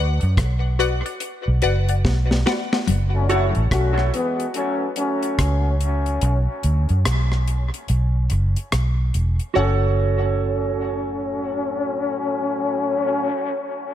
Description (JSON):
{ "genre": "dub reggae", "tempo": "72 BPM", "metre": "4/4", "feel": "swing 62% on 16ths", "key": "F# minor", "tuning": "A4 = 445 Hz", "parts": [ { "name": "filtered dub chord stab", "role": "stabs", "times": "0.0-3.5, 9.6-13.3 s", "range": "F#4 to F#5", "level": "-26 LUFS", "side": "left 4 dB", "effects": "phaser, dub echo" }, { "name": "vintage muted fingered electric bass", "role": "bass", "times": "0.0-13.3 s", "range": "E1 to F#2", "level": "-19 LUFS", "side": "equal", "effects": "none" }, { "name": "deep reggae drum kit", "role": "drums", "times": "0.2-9.5 s", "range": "hi-hat, kick drum, rim click, snare drum", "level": "-25 LUFS", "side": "equal", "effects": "none" }, { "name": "clean electric guitar", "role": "riff", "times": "2.9-3.1 s", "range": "F#2", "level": "-27 LUFS", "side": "left 5 dB", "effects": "none" }, { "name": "muted trombone section", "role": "second line", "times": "3.1-13.3 s", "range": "A2 to F#4", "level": "-24 LUFS", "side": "left 2 dB", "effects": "dub echo" }, { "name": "mellow electric guitar", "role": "accompaniment", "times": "3.3-3.5, 9.5-13.4 s", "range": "F#4 to C#5", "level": "-27 LUFS", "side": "right 9 dB", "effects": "spring reverb, dub echo" } ], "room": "light reverb, studio reverb", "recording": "echo-heavy mix", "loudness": "-19 LUFS", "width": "side -11 dB against mid", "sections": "0.0-2.9 A section; 2.9-9.5 B section; 9.5-12.9 C section", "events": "break 0.0-2.9; drum fill 2.0-2.9; kick muted 6.2-9.5", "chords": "0.0 Bm; 2.9 F#m; 6.2 N.C.; 9.5 F#m" }